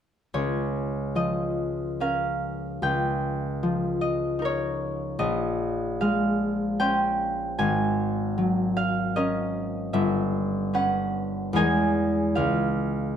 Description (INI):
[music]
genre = classical, solo harp piece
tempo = 75 BPM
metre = 3/4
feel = rubato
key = Db lydian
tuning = A4 = 440 Hz
[part]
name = concert harp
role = solo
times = 0.3-13.2 s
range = G1 to Ab5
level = -23 LUFS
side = equal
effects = none
[sound]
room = moderate stone room reverb, RT60 1.1 s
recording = dark, warm production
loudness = -23 LUFS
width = side -8 dB against mid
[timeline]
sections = 0.3-13.2 A section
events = none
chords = 0.3 Db6; 2.8 Eb9/Db; 5.2 Bbm11; 7.6 Ab9sus4; 9.9 Gmaj7#11; 11.6 E; 12.4 Db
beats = | 0.33 1.17 2.00 | 2.82 3.62 4.41 | 5.19 5.99 6.79 | 7.58 8.37 9.17 | 9.95 10.74 11.55 | 12.36